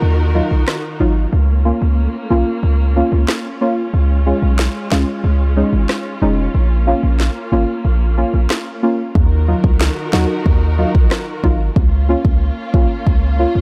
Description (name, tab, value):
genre	dancehall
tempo	92 BPM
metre	4/4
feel	straight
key	Bb minor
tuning	A4 = 438 Hz
part	dark studio string section	sustained chords	0.0-13.6 s	Eb3 to Bb4	-28 LUFS	equal	sidechain pumping
part	hard-hitting 808-style bass	bass	0.0-13.6 s	F1 to Eb2	-17 LUFS	equal	none
part	deep mellow chord stab	accompaniment	0.3-13.5 s	Gb3 to Gb4	-22 LUFS	equal	chorus
part	afro-pop drum kit	drums	0.7-13.2 s	kick drum, rim click, snare drum	-18 LUFS	equal	none
room	digital ambience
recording	dark, warm production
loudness	-16 LUFS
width	mono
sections	0.0-13.6 A section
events	break 0.0-9.2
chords	0.0 Ebmadd9; 1.3 Bbm; 3.9 Db; 6.5 Bbm; 9.2 Ebmadd9; 11.8 Bbm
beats	0.02 0.67 | 1.33 1.98 2.63 3.28 | 3.94 4.59 5.24 5.89 | 6.54 7.20 7.85 8.50 | 9.15 9.80 10.46 11.11 | 11.76 12.41 13.06